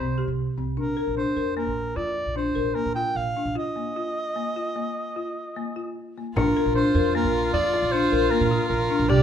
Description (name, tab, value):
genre	contemporary instrumental, chamber music in an uneven meter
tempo	152 BPM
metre	7/4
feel	straight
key	Bb major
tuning	A4 = 439 Hz
part	warm soprano saxophone	melody	0.0-9.2 s	Bb4 to G5	-27 LUFS	right 1 dB	none
part	folk marimba with medium hard mallets	arpeggios	0.0-9.2 s	Bb3 to Bb4	-26 LUFS	left 3 dB	none
part	upright bass	bass	0.0-9.2 s	Bb1 to Bb2	-27 LUFS	right 2 dB	none
part	bright viola	second line	6.3-9.2 s	F4 to G4	-27 LUFS	equal	none
part	frame drum	percussion	6.4-9.2 s	none	-30 LUFS	left 1 dB	none
room	moderate recital hall reverb, RT60 1.4 s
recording	minimal, uncompressed stereo recording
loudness	-22 LUFS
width	side -9 dB against mid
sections	0.0-6.3 A section; 6.3-9.2 A section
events	break 3.6-6.3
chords	0.0 C5; 0.8 Bb; 3.6 Bbsus4; 6.3 Bb